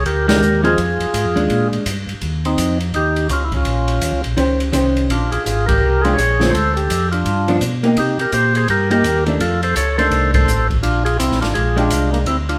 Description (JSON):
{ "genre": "soul jazz organ trio", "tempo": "167 BPM", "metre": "4/4", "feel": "swing 63% on 8ths", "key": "Bb mixolydian", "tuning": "A4 = 440 Hz", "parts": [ { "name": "percussive tonewheel organ", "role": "melody", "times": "0.0-12.6 s", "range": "Bb3 to Db5", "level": "-20 LUFS", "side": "equal", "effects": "slow rotary speaker" }, { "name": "mellow tonewheel organ", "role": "bass", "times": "0.0-12.6 s", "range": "Ab1 to C3", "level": "-22 LUFS", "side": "equal", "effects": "chorus vibrato, slow rotary speaker" }, { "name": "open jazz drum kit", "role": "drums", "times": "0.1-12.6 s", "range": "hi-hat, kick drum, ride cymbal, snare drum", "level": "-26 LUFS", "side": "equal", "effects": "none" }, { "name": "vintage hollow-body jazz guitar", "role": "accompaniment", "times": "0.3-1.8, 4.4-12.2 s", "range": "D3 to C5", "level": "-21 LUFS", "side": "equal", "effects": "none" } ], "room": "wet stone room reverb, RT60 1.0 s", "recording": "band playing live in one room", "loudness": "-17 LUFS", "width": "mono", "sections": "0.0-12.6 A section", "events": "band accent 0.2, 5.6, 10.3", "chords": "0.0 Bb13; 0.8 Fm7; 1.5 Bb6; 2.2 Eb13; 5.1 Bb13; 6.5 Dm; 7.2 G7; 8.0 Cm7; 9.4 F6; 10.8 Bb13" }